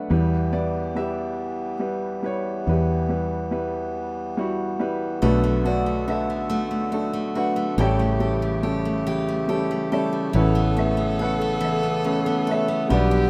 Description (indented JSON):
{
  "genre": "acoustic folk-pop ballad",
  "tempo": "47 BPM (dotted quarters)",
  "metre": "6/8",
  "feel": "straight",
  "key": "unclear",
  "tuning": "A4 = 437 Hz",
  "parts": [
    { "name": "warm upright piano", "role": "melody", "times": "0.0-13.3 s", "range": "A1 to G5", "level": "-27 LUFS", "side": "equal", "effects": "none" },
    { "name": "fingered electric bass", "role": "bass", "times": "0.0-13.3 s", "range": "A1 to E2", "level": "-27 LUFS", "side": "equal", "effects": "none" },
    { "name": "hand-pumped harmonium", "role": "sustained chords", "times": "0.1-13.3 s", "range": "C#3 to A4", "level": "-32 LUFS", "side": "equal", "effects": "plate reverb" },
    { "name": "picked steel-string acoustic guitar", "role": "arpeggios", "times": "5.2-13.3 s", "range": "E3 to A4", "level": "-29 LUFS", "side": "equal", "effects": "none" },
    { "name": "rich viola", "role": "second line", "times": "10.3-13.3 s", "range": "G4 to A4", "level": "-30 LUFS", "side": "equal", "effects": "none" }
  ],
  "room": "moderate small room reverb, RT60 0.6 s",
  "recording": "rough home demo mix",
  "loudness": "-23 LUFS",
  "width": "mono",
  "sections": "0.1-10.3 A section; 10.3-13.3 B section",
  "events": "none",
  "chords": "0.1 Em; 5.2 Bm7; 7.8 A7; 10.3 Aadd9"
}